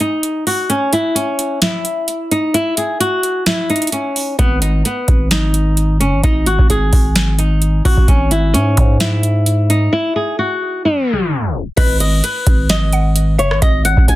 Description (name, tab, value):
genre	hip hop, trap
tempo	130 BPM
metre	4/4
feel	half-time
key	unclear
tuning	A4 = 441 Hz
part	flamenco guitar	melody	0.0-14.2 s	B3 to G#5	-17 LUFS	left 1 dB	low-pass filter, plate reverb, tape echo
part	booming analog drum machine	drums	0.0-14.2 s	crash cymbal, hi-hat, kick drum, rim click, snare drum	-14 LUFS	equal	none
part	growling 808-style bass	bass	4.4-14.2 s	F#1 to G#2	-15 LUFS	equal	none
part	reverse cymbal	sound effects	11.0-11.8 s	none	-29 LUFS	left 3 dB	none
part	mallet-like synth pluck	second line	11.8-14.1 s	D#5 to F#5	-26 LUFS	right 3 dB	chorus, plate reverb, tape echo
room	light reverb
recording	dense, heavily limited modern master, tape stop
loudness	-13 LUFS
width	side -16 dB against mid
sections	0.0-11.8 A section; 11.8-14.2 B section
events	break 0.0-4.4, 9.9-11.8; tape stop 10.8-11.8; reverse cymbal 11.0-11.8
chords	0.0 N.C.; 4.4 G#5; 8.1 E6/G#; 11.8 Emaj9 (rootless)